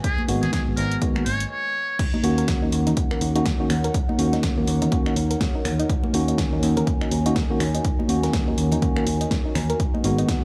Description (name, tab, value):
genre	deep house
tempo	123 BPM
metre	4/4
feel	swing 59% on 16ths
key	Eb minor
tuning	A4 = 439 Hz
part	trumpet with metal mute	melody	0.0-2.0 s	Ab4 to Db5	-30 LUFS	equal	analog delay
part	dark analog pad	sustained chords	0.0-10.4 s	Eb4 to Ab5	-34 LUFS	equal	chorus, sidechain pumping
part	deep house drum kit	drums	0.0-10.4 s	crash cymbal, finger snaps, hi-hat, snare drum	-33 LUFS	equal	none
part	electronic kick drum	drums	0.0-10.4 s	none	-28 LUFS	equal	overdrive
part	congas	percussion	0.2-10.0 s	none	-32 LUFS	equal	sidechain pumping on perc
part	tine electric piano	stabs	0.3-10.4 s	Eb3 to Gb4	-27 LUFS	equal	sidechain pumping, analog delay
part	fingered electric bass	bass	0.3-10.2 s	Ab1 to Eb2	-27 LUFS	equal	tube saturation, sidechain pumping
part	soft round pluck	arpeggios	2.1-10.2 s	Bb3 to Bb4	-34 LUFS	equal	chorus, vintage 12-bit sampler grit, sidechain pumping, analog delay
room	little or no reverb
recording	dry, gritty hardware recording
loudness	-22 LUFS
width	mono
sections	0.0-2.0 A section; 2.0-10.4 B section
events	break 1.5-2.0; drop 2.0-10.4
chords	0.0 Abm7; 2.0 Ebm7; 9.8 Abm7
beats	| 0.04 0.53 1.02 1.50 | 1.99 2.48 2.97 3.46 | 3.94 4.43 4.92 5.41 | 5.89 6.38 6.87 7.36 | 7.85 8.33 8.82 9.31 | 9.80 10.29